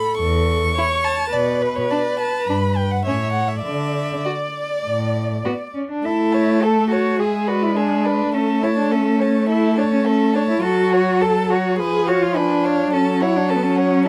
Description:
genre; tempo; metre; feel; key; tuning
quick classical-period movement for string quartet; 104 BPM; 4/4; straight; D major, A major from 6.0 s; A4 = 440 Hz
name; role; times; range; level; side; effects
warm violin; melody; 0.0-14.1 s; B4 to C#6; -29 LUFS; equal; none
rich viola; accompaniment; 0.0-14.1 s; E#3 to D5; -24 LUFS; equal; none
warm cello; bass; 0.2-14.1 s; E2 to A4; -23 LUFS; equal; none
rich violin; second line; 0.8-14.1 s; C#4 to C#5; -26 LUFS; equal; none
room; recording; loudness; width
light reverb; close, detailed microphones; -19 LUFS; mono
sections
0.0-6.0 A section; 6.0-14.1 B section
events
none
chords
0.0 A; 1.3 Bm; 2.5 G; 3.1 A; 3.7 D5; 6.0 A; 7.2 E7/G#; 8.3 A; 10.6 F#m; 11.8 C#7/E#; 12.9 F#m

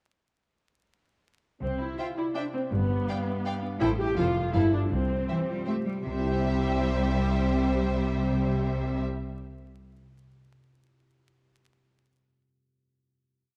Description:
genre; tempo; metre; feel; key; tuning
cinematic, playful, whimsical film cue; 163 BPM; 3/4; straight; C major; A4 = 440 Hz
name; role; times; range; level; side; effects
clear studio viola section; accompaniment; 1.6-9.0 s; G3 to G4; -35 LUFS; equal; none
dark French horn section; sustained chords; 1.6-9.0 s; B3 to G4; -36 LUFS; equal; none
concert harp; arpeggios; 1.6-10.0 s; F2 to F5; -38 LUFS; equal; none
clear studio cello section; bass; 1.6-9.0 s; F2 to A3; -34 LUFS; equal; none
clear studio double bass section; bass; 1.6-9.0 s; F1 to C2; -32 LUFS; equal; none
rich studio violin section; melody; 2.0-9.0 s; E5 to G5; -43 LUFS; equal; none
rich studio violin section; second line; 2.0-9.0 s; G4 to F5; -39 LUFS; equal; none
room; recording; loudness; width
moderate scoring stage reverb, RT60 1.9 s; dark, warm production, vinyl crackle; -28 LUFS; mono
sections
1.6-6.1 A section; 6.1-8.3 final chord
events
none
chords
1.6 C; 2.7 G7; 3.8 A7(no3); 4.2 F; 4.5 G7sus2; 4.9 C

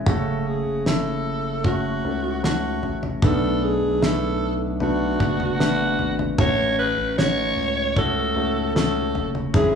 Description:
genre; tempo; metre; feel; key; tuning
pop ballad; 76 BPM; 4/4; straight; unclear; A4 = 441 Hz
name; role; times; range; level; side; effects
warm upright piano; accompaniment; 0.0-9.8 s; G#2 to A4; -24 LUFS; left 3 dB; none
saturated sub bass; bass; 0.0-9.8 s; F#1 to C#2; -29 LUFS; right 1 dB; none
raspy alto saxophone; melody; 0.1-9.8 s; F#4 to C#5; -24 LUFS; right 2 dB; none
damped 70s drum kit; drums; 0.1-9.7 s; kick drum, snare drum, toms; -24 LUFS; equal; none
room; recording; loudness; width
moderate large studio reverb, RT60 1.2 s; band playing live in one room, studio ambience; -20 LUFS; side -6 dB against mid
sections
0.0-9.8 A section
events
none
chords
0.1 F#m; 3.2 Bm7; 6.4 F#m/A

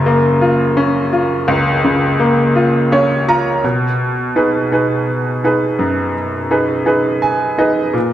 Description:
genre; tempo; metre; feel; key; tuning
folk; 56 BPM (dotted quarters); 6/8; straight; unclear; A4 = 444 Hz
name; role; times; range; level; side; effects
bright upright piano; solo; 0.0-8.1 s; F#1 to A#5; -12 LUFS; equal; none
room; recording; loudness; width
wet recital hall reverb, RT60 1.6 s; dark, warm production; -13 LUFS; side -12 dB against mid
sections
0.0-3.6 A section; 3.6-8.1 B section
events
none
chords
0.0 F#maj7; 3.6 B6

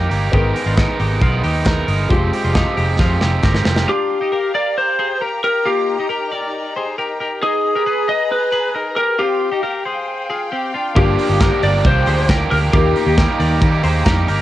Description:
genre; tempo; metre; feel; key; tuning
jangly indie pop; 136 BPM; 4/4; straight; unclear; A4 = 441 Hz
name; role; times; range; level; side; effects
biting overdriven guitar; accompaniment; 0.0-3.9, 11.0-14.4 s; G2 to Bb4; -21 LUFS; right 5 dB; cassette tape
dark upright piano; accompaniment; 0.0-3.9, 10.9-14.4 s; Ab3 to Bb4; -26 LUFS; left 3 dB; cassette tape
twelve-string electric guitar; arpeggios; 0.0-14.4 s; Bb3 to Eb5; -24 LUFS; left 3 dB; cassette tape
vintage muted fingered electric bass; bass; 0.0-3.8, 11.0-14.4 s; F1 to Eb3; -18 LUFS; equal; none
modern studio drum kit; drums; 0.1-3.9, 11.0-14.4 s; hi-hat, kick drum, ride cymbal, snare drum; -18 LUFS; equal; cassette tape
group handclap; percussion; 0.8-3.5, 11.4-14.2 s; none; -35 LUFS; left 4 dB; none
lightly driven lead guitar; melody; 3.9-13.1 s; G4 to Eb5; -18 LUFS; left 1 dB; cassette tape
warm studio string section; sustained chords; 3.9-14.4 s; Eb4 to Bb5; -27 LUFS; right 1 dB; cassette tape
room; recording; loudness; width
little or no reverb; home recording on cassette, nothing above 10.5 kHz; -14 LUFS; side -14 dB against mid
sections
0.0-3.9 A section; 3.9-14.4 B section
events
drum fill 3.0-3.9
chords
0.3 Abmadd9; 2.1 Fmadd9; 3.9 Gm7; 5.7 Eb; 7.4 Abmadd9; 9.2 Fmadd9; 11.0 Gm7

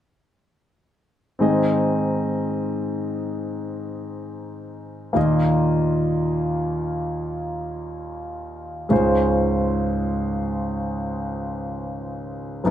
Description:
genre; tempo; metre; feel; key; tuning
pop; free time; none; none; Ab major; A4 = 440 Hz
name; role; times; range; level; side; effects
warm concert grand piano; accompaniment; 1.4-12.7 s; B1 to Eb5; -21 LUFS; equal; none
room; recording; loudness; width
moderate studio reverb, RT60 0.6 s; band playing live in one room; -21 LUFS; side -11 dB against mid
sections
1.4-12.7 A section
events
none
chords
1.4 Ab; 5.2 Ebsus2; 8.9 Dbmaj7

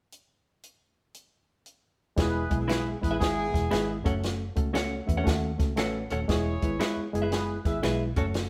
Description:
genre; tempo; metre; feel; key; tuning
uptempo 1960s-style soul; 117 BPM; 4/4; swing 66% on 8ths; E major; A4 = 440 Hz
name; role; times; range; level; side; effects
compact cocktail drum kit; drums; 0.1-8.5 s; hi-hat, kick drum, snare drum; -32 LUFS; equal; none
warm horn section; second line; 2.2-7.8 s; B3 to E5; -36 LUFS; equal; none
barky reed electric piano; accompaniment; 2.2-8.5 s; G#3 to A5; -33 LUFS; equal; overdrive
vintage muted fingered electric bass; bass; 2.2-8.5 s; D#1 to E2; -35 LUFS; equal; none
semi-hollow electric guitar; stabs; 2.7-8.3 s; C#4 to F#5; -36 LUFS; equal; none
finger snap; percussion; 2.7-8.0 s; none; -44 LUFS; equal; none
room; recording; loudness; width
moderate stone room reverb, RT60 1.0 s; band playing live in one room; -28 LUFS; mono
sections
0.1-2.2 A section; 2.2-6.3 B section; 6.3-8.5 C section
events
reed electric piano fill 4.7-6.3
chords
0.1 N.C.; 2.2 E; 4.0 F#m; 6.3 E

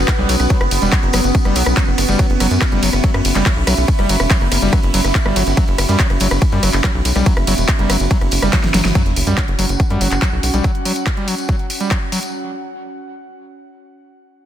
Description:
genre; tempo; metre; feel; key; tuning
psychedelic trance; 142 BPM; 4/4; straight; unclear; A4 = 444 Hz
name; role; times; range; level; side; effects
evolving wavetable pad; sustained chords; 0.0-9.0 s; B3 to E5; -23 LUFS; right 2 dB; phaser, built-in reverb, sidechain pumping
tight sequencer bass; bass; 0.0-10.6 s; E1 to F#2; -18 LUFS; equal; none
airy breathy pad; texture; 0.0-12.3 s; C#4 to B5; -24 LUFS; right 1 dB; chorus, sidechain pumping
big-room dance drum kit; drums; 0.1-12.3 s; handclaps, hi-hat, ride cymbal, rim click, snare drum; -21 LUFS; equal; overdrive
electronic kick drum; drums; 0.1-12.0 s; none; -16 LUFS; equal; overdrive
tambourine; percussion; 0.1-12.3 s; none; -28 LUFS; left 5 dB; none
screaming distorted acid line; riff; 0.2-12.2 s; F#3 to G3; -23 LUFS; moving between left 3 dB and right 4 dB; distortion, chorus, auto-pan, sidechain pumping, digital delay
metallic wobble bass; second line; 1.0-1.2, 4.4-8.0 s; F#3 to A#3; -32 LUFS; right 3 dB; none
sub drop; sound effects; 9.0-10.6 s; none; -28 LUFS; equal; none
room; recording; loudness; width
digital ambience; dense, heavily limited modern master; -13 LUFS; side -10 dB against mid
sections
0.0-9.0 A section; 9.0-12.3 B section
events
drop 0.0-9.0; drum fill 8.5-9.0; band accent 8.8; impact 9.0-10.6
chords
0.0 F#5

